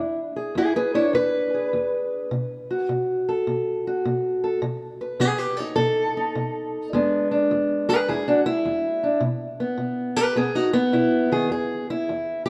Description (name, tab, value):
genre	acoustic country blues, solo or duo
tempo	104 BPM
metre	4/4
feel	swing 67% on 8ths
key	E mixolydian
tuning	A4 = 440 Hz
part	fingerpicked steel-string acoustic guitar	solo	0.0-12.5 s	E2 to C#5	-24 LUFS	equal	none
room	wet plate reverb, RT60 2.4 s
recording	heard from further back in the room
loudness	-23 LUFS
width	mono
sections	0.0-11.5 A section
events	steel-string acoustic guitar solo 0.0-11.5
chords	0.0 E7; 2.3 B7; 6.9 E7; 9.2 B; 11.5 E